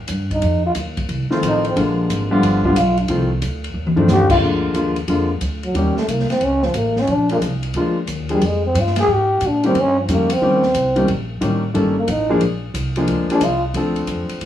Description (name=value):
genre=jazz, small-group swing and bop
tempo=180 BPM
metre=4/4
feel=swing 65% on 8ths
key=Bb major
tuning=A4 = 436 Hz
part: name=upright bass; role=bass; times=0.1-14.5 s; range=G1 to Bb2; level=-23 LUFS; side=equal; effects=none
part: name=open jazz drum kit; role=drums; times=0.1-14.5 s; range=crash cymbal, hi-hat, kick drum, ride cymbal, snare drum, toms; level=-26 LUFS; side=equal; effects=none
part: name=growling trombone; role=melody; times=0.3-13.6 s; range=F3 to Ab4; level=-18 LUFS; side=equal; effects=plate reverb
part: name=warm baby grand piano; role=accompaniment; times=1.3-14.4 s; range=D3 to A4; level=-18 LUFS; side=left 1 dB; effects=plate reverb
room=moderate small room reverb, RT60 0.5 s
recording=rough home demo mix, small room ambience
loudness=-16 LUFS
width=side -11 dB against mid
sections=0.0-4.4 A section; 4.4-14.5 A section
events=trombone solo 0.0-14.5; drum fill 3.8-4.1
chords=0.4 F7; 1.8 Bb7; 2.4 G7; 3.1 F7; 4.4 Bb7; 5.8 Eb7; 7.1 Bb7; 9.7 Eb7; 12.4 Bb7; 13.7 Dm7